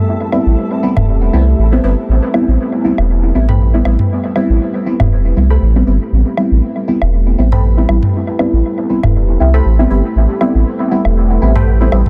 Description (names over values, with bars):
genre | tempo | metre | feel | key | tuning
dub techno | 119 BPM | 4/4 | swing 55% on 16ths | A minor | A4 = 440 Hz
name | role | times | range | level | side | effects
deep dark ambient pad | sustained chords | 0.0-12.1 s | A3 to E5 | -26 LUFS | equal | chorus, built-in reverb
flickering grainy texture | texture | 0.0-2.1 s | A4 | -35 LUFS | equal | built-in reverb
deep mellow chord stab | stabs | 0.3-12.0 s | G3 to E4 | -18 LUFS | equal | chorus, phaser, dub echo
electronic woodblock and toms | percussion | 0.3-12.1 s | none | -20 LUFS | equal | dub echo
warm sub bass | bass | 0.5-12.0 s | E1 to C2 | -14 LUFS | equal | none
filtered dub chord stab | riff | 3.5-11.7 s | A4 to B5 | -30 LUFS | equal | phaser, dub echo
room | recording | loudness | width
light reverb | dense, heavily limited modern master | -13 LUFS | mono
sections
0.0-2.1 A section; 2.1-12.1 A section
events
filter sweep on synth stab 0.0-2.1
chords
0.0 Am9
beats
| 0.07 0.58 1.08 1.58 | 2.09 2.59 3.10 3.60 | 4.11 4.61 5.11 5.62 | 6.12 6.63 7.13 7.63 | 8.14 8.64 9.15 9.65 | 10.16 10.66 11.16 11.67